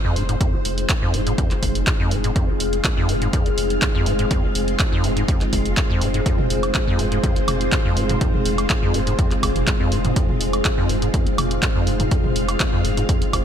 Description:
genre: acid house.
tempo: 123 BPM.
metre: 4/4.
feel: straight.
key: F minor.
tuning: A4 = 440 Hz.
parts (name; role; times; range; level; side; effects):
string machine, full ensemble; sustained chords; 0.0-13.4 s; Ab3 to F5; -26 LUFS; left 1 dB; ensemble chorus, sidechain pumping.
acid bass, square; riff; 0.0-13.3 s; F1 to Ab2; -25 LUFS; equal; tube saturation, ensemble chorus, ping-pong delay.
deep dark ambient pad; texture; 0.1-13.4 s; Eb4 to C5; -27 LUFS; left 1 dB; chorus, built-in reverb, sidechain pumping.
saturated sub bass; bass; 0.2-13.4 s; F1; -25 LUFS; equal; tube saturation, sidechain pumping.
punchy analog drum machine; drums; 0.2-13.4 s; handclaps, hi-hat, toms, woodblock; -25 LUFS; right 1 dB; none.
electronic kick drum; drums; 0.4-13.4 s; none; -21 LUFS; equal; none.
room: little or no reverb.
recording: none.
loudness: -17 LUFS.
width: side -9 dB against mid.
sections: 0.0-13.4 A section.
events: filter sweep on acid bass 0.0-13.4.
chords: 0.0 Fm.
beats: | 0.41 0.89 1.38 1.87 | 2.36 2.85 3.33 3.82 | 4.31 4.80 5.29 5.77 | 6.26 6.75 7.24 7.72 | 8.21 8.70 9.19 9.68 | 10.16 10.65 11.14 11.63 | 12.11 12.60 13.09.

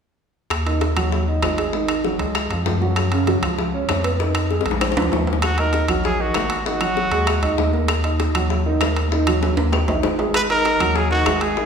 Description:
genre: Afro-Cuban jazz.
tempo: 195 BPM.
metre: 4/4.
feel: straight.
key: Eb minor.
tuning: A4 = 441 Hz.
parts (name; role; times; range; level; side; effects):
saturated sub bass; bass; 0.5-11.7 s; Ab1 to Gb2; -22 LUFS; equal; none.
bongos; percussion; 0.5-11.7 s; none; -26 LUFS; left 6 dB; none.
claves; percussion; 0.5-11.4 s; none; -33 LUFS; left 8 dB; none.
timbales; percussion; 0.5-11.6 s; none; -26 LUFS; right 2 dB; none.
warm grand piano; accompaniment; 0.7-11.7 s; Db3 to Eb5; -23 LUFS; right 3 dB; none.
clear trumpet; melody; 5.4-7.7, 10.4-11.7 s; Gb4 to Cb5; -21 LUFS; equal; none.
room: wet recital hall reverb, RT60 1.6 s.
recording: recorded in a church or concert hall.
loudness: -17 LUFS.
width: side -6 dB against mid.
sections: 0.5-5.4 A section; 5.4-11.7 B section.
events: drum fill 4.5-5.4, 9.4-10.3.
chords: 0.5 Ebmadd11; 1.7 Ab5; 2.4 Db; 3.0 Gb5; 4.2 Bb7sus4; 4.8 Bb7; 5.4 Ebm; 6.7 Ab5; 7.9 Ebm; 10.3 Ab7(no3).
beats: | 0.51 0.81 1.12 1.43 | 1.74 2.04 2.35 2.66 | 2.97 3.27 3.58 3.89 | 4.20 4.50 4.81 5.12 | 5.43 5.74 6.04 6.35 | 6.66 6.96 7.27 7.58 | 7.89 8.19 8.50 8.81 | 9.12 9.42 9.73 10.04 | 10.34 10.65 10.96 11.27 | 11.57.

